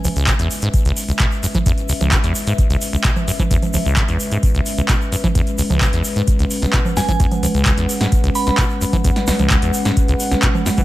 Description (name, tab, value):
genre	acid house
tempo	130 BPM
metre	4/4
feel	straight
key	C# minor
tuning	A4 = 440 Hz
part	dark analog pad	sustained chords	0.0-10.8 s	G#3 to F#5	-23 LUFS	equal	chorus, sidechain pumping
part	acid bass, saw	riff	0.0-10.8 s	C#2 to E3	-20 LUFS	equal	tube saturation
part	electro analog drum machine	drums	0.0-10.8 s	congas, handclaps, hi-hat, snare drum	-21 LUFS	right 1 dB	overdrive
part	egg shaker	percussion	0.0-10.8 s	none	-30 LUFS	right 2 dB	none
part	electronic kick drum	drums	0.3-10.8 s	none	-18 LUFS	equal	overdrive
part	glassy synth bell	melody	7.0-8.5 s	G#5 to B5	-27 LUFS	right 4 dB	chorus, ping-pong delay
room	digital ambience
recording	none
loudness	-14 LUFS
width	side -16 dB against mid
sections	0.0-10.8 A section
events	none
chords	0.0 C#m7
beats	0.28 | 0.74 1.20 1.66 2.12 | 2.58 3.04 3.51 3.97 | 4.43 4.89 5.35 5.82 | 6.28 6.74 7.20 7.66 | 8.12 8.58 9.04 9.51 | 9.97 10.43